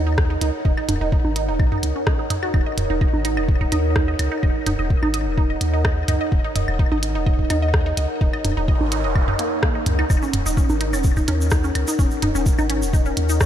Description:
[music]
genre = minimal techno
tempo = 127 BPM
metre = 4/4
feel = straight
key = Eb minor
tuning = A4 = 441 Hz
[part]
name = punchy sub bass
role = bass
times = 0.0-13.5 s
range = Eb1 to Eb2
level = -23 LUFS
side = equal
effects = tube saturation, sidechain pumping
[part]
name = warbly tape-like pad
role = texture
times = 0.0-13.5 s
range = Eb4 to Gb5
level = -28 LUFS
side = right 1 dB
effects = chorus, built-in reverb, sidechain pumping
[part]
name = resonant blip pluck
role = riff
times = 0.1-13.4 s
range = Bb3 to Eb5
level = -26 LUFS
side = right 1 dB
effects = phaser, sidechain pumping, ping-pong delay
[part]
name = electronic kick drum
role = drums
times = 0.2-13.5 s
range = none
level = -19 LUFS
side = equal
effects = studio reverb
[part]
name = minimal click drum kit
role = drums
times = 0.2-13.5 s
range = hi-hat, rim click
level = -30 LUFS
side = equal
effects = studio reverb
[part]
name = electronic claves, toms and congas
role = percussion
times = 0.8-13.5 s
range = none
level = -28 LUFS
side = right 1 dB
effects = overdrive, studio reverb, ping-pong delay
[part]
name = noise sweep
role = sound effects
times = 8.5-10.1 s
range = none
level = -34 LUFS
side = right 2 dB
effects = none
[part]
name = tube shaker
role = percussion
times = 10.1-13.5 s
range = none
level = -32 LUFS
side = right 1 dB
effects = none
[sound]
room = light reverb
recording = none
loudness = -18 LUFS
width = side -10 dB against mid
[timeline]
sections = 0.0-13.5 A section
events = noise sweep 8.5-10.1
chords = 0.0 Ebm7

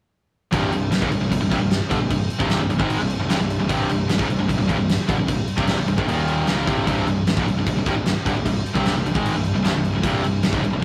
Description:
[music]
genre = heavy metal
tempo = 152 BPM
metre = 4/4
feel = straight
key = C minor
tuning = A4 = 439 Hz
[part]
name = high-gain distorted guitar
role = riff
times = 0.5-10.8 s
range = C2 to Ab3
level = -25 LUFS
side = equal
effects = distortion
[part]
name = scooped high-gain guitar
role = riff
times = 0.5-10.8 s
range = C2 to Ab3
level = -30 LUFS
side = equal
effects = distortion
[part]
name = picked electric bass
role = bass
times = 0.5-10.8 s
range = C1 to Ab1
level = -30 LUFS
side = equal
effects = none
[part]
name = big rock drum kit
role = drums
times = 0.5-10.7 s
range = crash cymbal, kick drum, snare drum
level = -26 LUFS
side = equal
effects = none
[sound]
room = light reverb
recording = rough rehearsal-room recording, warm saturation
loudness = -21 LUFS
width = mono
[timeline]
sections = 0.5-10.8 A section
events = none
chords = 0.5 C5; 6.1 Eb5; 6.5 C5

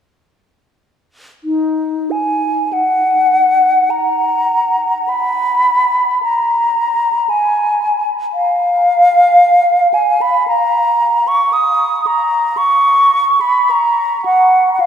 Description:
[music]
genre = classical, free, expressive piece for unaccompanied flute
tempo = 40-58 BPM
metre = 4/4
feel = rubato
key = unclear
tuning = A4 = 443 Hz
[part]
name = mellow silver concert flute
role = solo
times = 1.4-14.9 s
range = Eb4 to Eb6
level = -11 LUFS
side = equal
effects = none
[sound]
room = wet cathedral reverb, RT60 6.6 s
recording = heard from further back in the room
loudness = -11 LUFS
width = side -8 dB against mid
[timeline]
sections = 1.4-14.9 A section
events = none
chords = none

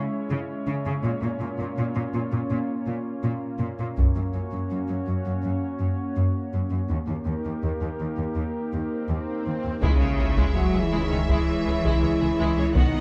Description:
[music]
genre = cinematic, hybrid orchestral and electronic film score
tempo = 82 BPM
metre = 4/4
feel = straight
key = C# dorian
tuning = A4 = 443 Hz
[part]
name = warbly tape-like pad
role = sustained chords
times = 0.0-13.0 s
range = G#3 to C#5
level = -33 LUFS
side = equal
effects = chorus, built-in reverb
[part]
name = rich symphonic cello section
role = bass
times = 0.3-13.0 s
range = D#2 to F#3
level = -30 LUFS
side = equal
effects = none
[part]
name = taiko ensemble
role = drums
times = 4.0-5.4, 9.8-13.0 s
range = none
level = -26 LUFS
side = equal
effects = none
[part]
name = swell and sub drop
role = sound effects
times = 9.2-12.8 s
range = none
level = -32 LUFS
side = equal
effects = none
[part]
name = rich studio violin section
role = melody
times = 9.8-13.0 s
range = E5 to F#5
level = -38 LUFS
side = equal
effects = none
[part]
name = warm symphonic violin section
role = second line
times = 9.8-13.0 s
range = E4 to D#5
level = -38 LUFS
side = equal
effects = none
[part]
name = clear symphonic viola section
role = accompaniment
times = 9.8-13.0 s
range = G#3 to B3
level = -35 LUFS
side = equal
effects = none
[part]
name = warm French horn section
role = sustained chords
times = 9.8-13.0 s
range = C#4 to F#4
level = -30 LUFS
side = equal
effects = none
[part]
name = clear symphonic double bass section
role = bass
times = 9.8-13.0 s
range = B1 to C#2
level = -30 LUFS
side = equal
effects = none
[sound]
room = light reverb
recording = dark, warm production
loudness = -26 LUFS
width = mono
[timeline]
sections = 0.0-9.8 A section; 9.8-13.0 B section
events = build-up 0.0-9.8; swell 9.2-9.8; impact 9.8-12.8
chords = 0.0 C#m; 1.0 A#m; 4.0 F#; 6.9 D#; 9.8 C#m

